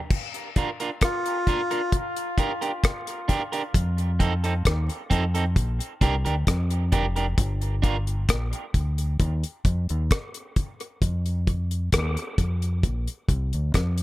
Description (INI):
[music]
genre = dub reggae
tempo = 66 BPM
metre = 4/4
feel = straight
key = G minor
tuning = A4 = 443 Hz
[part]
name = deep reggae drum kit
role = drums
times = 0.1-14.0 s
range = crash cymbal, hi-hat, kick drum, rim click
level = -24 LUFS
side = equal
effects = none
[part]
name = electric guitar at the edge of break-up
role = accompaniment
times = 0.6-8.0 s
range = C4 to Bb4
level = -30 LUFS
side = right 4 dB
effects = dub echo
[part]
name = melodica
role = melody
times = 1.0-2.0 s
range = F4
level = -30 LUFS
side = left 1 dB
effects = dub echo
[part]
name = deep dub fingered electric bass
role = bass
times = 3.8-14.0 s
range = F1 to F2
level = -24 LUFS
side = equal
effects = none
[sound]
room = light reverb, small room ambience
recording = none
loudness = -23 LUFS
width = side -16 dB against mid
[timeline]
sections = 0.1-14.0 A section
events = none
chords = 0.1 Dm; 1.9 Gm/D; 3.7 F7; 5.6 Bb6; 7.4 Gm; 9.2 Ebsus2; 12.8 Bb